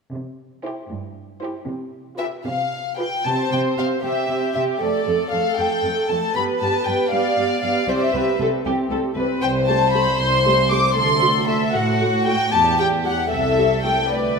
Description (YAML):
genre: quick classical-period movement for string orchestra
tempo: 78 BPM (dotted quarters)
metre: 6/8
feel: straight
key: C major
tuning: A4 = 440 Hz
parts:
  - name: warm studio cello section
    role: bass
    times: 0.1-14.4 s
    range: C2 to C3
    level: -26 LUFS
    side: right 3 dB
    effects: none
  - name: warm symphonic violin section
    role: melody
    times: 0.6-14.4 s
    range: B4 to D6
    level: -21 LUFS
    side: left 2 dB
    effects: none
  - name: rich studio violin section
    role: second line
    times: 0.6-14.4 s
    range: F#4 to D5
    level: -23 LUFS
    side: left 2 dB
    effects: none
  - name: dark symphonic viola section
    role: accompaniment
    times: 0.6-13.9 s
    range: G3 to A4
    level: -25 LUFS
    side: right 4 dB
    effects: none
room: wet scoring stage reverb, RT60 2.0 s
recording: minimal, uncompressed stereo recording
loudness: -17 LUFS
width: side -5 dB against mid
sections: 0.1-3.3 A section; 3.3-14.4 B section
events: none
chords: 0.1 C; 1.7 G7/C; 3.3 C; 4.8 Dm/F; 6.4 G7; 7.9 C5; 9.4 Am7/C; 11.0 D7; 12.5 Em; 13.3 Am7/C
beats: | 0.13 0.91 | 1.68 2.45 | 3.25 4.04 | 4.81 5.58 | 6.35 7.12 | 7.88 8.66 | 9.43 10.19 | 10.96 11.74 | 12.52 13.30 | 14.11